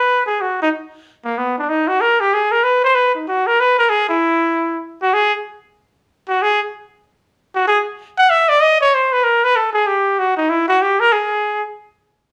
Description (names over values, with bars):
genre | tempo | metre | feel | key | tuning
jazz | 190 BPM | 4/4 | swing 63% on 8ths | G# minor | A4 = 443 Hz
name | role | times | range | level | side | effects
clear trumpet | solo | 0.0-11.6 s | A#3 to F#5 | -16 LUFS | equal | none
room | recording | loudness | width
wet studio reverb, RT60 0.7 s | band playing live in one room | -16 LUFS | mono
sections
0.0-12.3 A section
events
none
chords
none